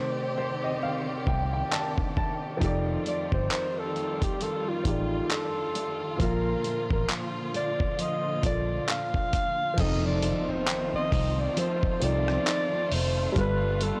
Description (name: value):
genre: contemporary R&B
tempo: 67 BPM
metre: 4/4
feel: swing 58% on 16ths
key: unclear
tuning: A4 = 439 Hz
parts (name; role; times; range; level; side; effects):
- mellow alto saxophone; melody; 0.0-14.0 s; F4 to F5; -33 LUFS; equal; analog delay
- warm grand piano; accompaniment; 0.0-14.0 s; Bb2 to A5; -36 LUFS; equal; none
- warm studio string section; sustained chords; 0.0-14.0 s; Bb2 to D5; -38 LUFS; equal; sidechain pumping
- nylon-string guitar; arpeggios; 0.0-14.0 s; F2 to A4; -38 LUFS; equal; analog delay
- vintage muted fingered electric bass; bass; 1.3-13.9 s; F1 to C2; -32 LUFS; equal; none
- dusty soul sampler-style drum kit; drums; 1.3-14.0 s; crash cymbal, handclaps, hi-hat, kick drum, rim click; -32 LUFS; equal; none
- impact; sound effects; 9.9-13.4 s; none; -42 LUFS; equal; none
- mallet-like synth pluck; texture; 10.7-12.4 s; G5 to C6; -46 LUFS; equal; none
room: studio ambience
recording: dry, gritty hardware recording, transformer saturation, cassette tape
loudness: -28 LUFS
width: mono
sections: 0.0-9.8 A section; 9.8-14.0 B section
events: grand piano fill 0.0-2.6; impact 9.8-13.4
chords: 0.0 Cm69; 2.6 F13; 6.2 Bbmaj7; 9.8 F7; 13.4 G9